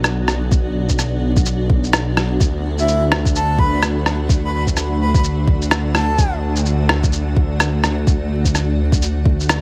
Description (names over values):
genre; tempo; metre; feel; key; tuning
future garage; 127 BPM; 4/4; swing 60% on 16ths; unclear; A4 = 441 Hz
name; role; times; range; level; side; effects
granular cloud pad; sustained chords; 0.0-9.6 s; A3 to F#5; -28 LUFS; equal; built-in reverb, sidechain pumping
dark detuned saw bass; bass; 0.0-9.6 s; B1 to D2; -21 LUFS; equal; sidechain pumping
electronic rim click and shaker; drums; 0.0-9.6 s; none; -22 LUFS; equal; none
electronic kick drum; drums; 0.5-9.4 s; none; -19 LUFS; equal; overdrive
breathy flute-like synth lead; melody; 2.8-6.3 s; E5 to B5; -26 LUFS; equal; lush chorus, tape echo
room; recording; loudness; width
digital ambience; vinyl crackle; -17 LUFS; mono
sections
0.0-9.6 A section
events
none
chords
0.0 Bm; 2.4 D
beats
0.04 | 0.52 0.99 1.46 1.93 | 2.41 2.88 3.35 3.82 | 4.30 4.77 5.24 5.71 | 6.19 6.66 7.13 7.60 | 8.07 8.55 9.02 9.49